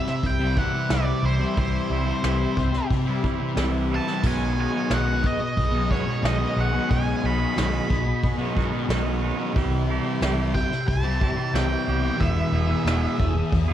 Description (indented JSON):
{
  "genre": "rock, shoegaze and dream pop",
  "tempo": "90 BPM",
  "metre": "4/4",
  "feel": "straight",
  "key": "unclear",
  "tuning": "A4 = 440 Hz",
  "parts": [
    { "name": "octave-fuzz lead guitar", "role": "melody", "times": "0.0-13.7 s", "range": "C5 to B5", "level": "-30 LUFS", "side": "right 2 dB", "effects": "distortion, tape echo" },
    { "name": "analog string pad", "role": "sustained chords", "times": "0.0-13.7 s", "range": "G4 to D#6", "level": "-34 LUFS", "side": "left 1 dB", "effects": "ensemble chorus" },
    { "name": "thick fuzz guitar", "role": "riff", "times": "0.0-13.7 s", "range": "E2 to C4", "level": "-27 LUFS", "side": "left 6 dB", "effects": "distortion, lush chorus" },
    { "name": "twangy electric guitar", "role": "riff", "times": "0.0-13.7 s", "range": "E2 to G#4", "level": "-29 LUFS", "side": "right 7 dB", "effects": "reverse reverb" },
    { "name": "soft brush drum kit", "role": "drums", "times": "0.1-13.7 s", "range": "crash cymbal, hi-hat, kick drum, snare drum", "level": "-28 LUFS", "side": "equal", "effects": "none" },
    { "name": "vintage muted fingered electric bass", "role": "bass", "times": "0.2-13.7 s", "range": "E1 to C3", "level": "-26 LUFS", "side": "equal", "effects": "none" }
  ],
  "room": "light reverb, small room ambience",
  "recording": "vinyl crackle",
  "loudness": "-21 LUFS",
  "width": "side -11 dB against mid",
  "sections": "0.0-13.7 A section",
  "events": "none",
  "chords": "0.0 Cmaj7; 4.2 B69; 9.6 Cmaj7; 12.2 Emaj7"
}